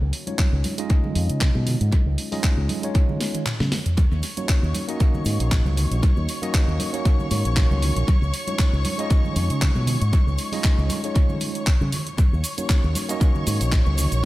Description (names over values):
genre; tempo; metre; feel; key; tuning
nu-disco, nu disco; 117 BPM; 4/4; swing 55% on 16ths; unclear; A4 = 441 Hz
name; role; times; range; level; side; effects
fingered electric bass with an envelope filter; bass; 0.0-14.2 s; Bb1 to Db3; -22 LUFS; equal; sidechain pumping
house drum kit; drums; 0.1-14.2 s; cabasa, handclaps, hi-hat, snare drum, toms; -29 LUFS; equal; analog delay
tine electric piano; accompaniment; 0.3-14.3 s; Ab3 to Eb5; -29 LUFS; right 1 dB; medium stereo tremolo, analog delay
congas and cabasa; percussion; 0.3-14.2 s; none; -32 LUFS; right 2 dB; analog delay
electronic kick drum; drums; 0.4-13.8 s; none; -19 LUFS; equal; none
dark chamber string section; sustained chords; 4.0-14.3 s; Db5 to Db6; -33 LUFS; left 2 dB; sidechain pumping
room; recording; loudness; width
little or no reverb; echo-heavy mix; -19 LUFS; side -17 dB against mid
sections
0.0-14.3 A section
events
drum fill 3.2-4.0; kick drops out 3.5-4.0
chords
0.0 Dbadd9; 4.0 Ebm7; 8.1 Dbadd9; 12.2 Ebm7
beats
0.39 0.90 1.42 | 1.93 2.44 2.95 3.47 | 3.98 4.49 5.00 5.52 | 6.03 6.54 7.06 7.57 | 8.08 8.59 9.11 9.62 | 10.13 10.65 11.16 11.67 | 12.18 12.70 13.21 13.72 | 14.24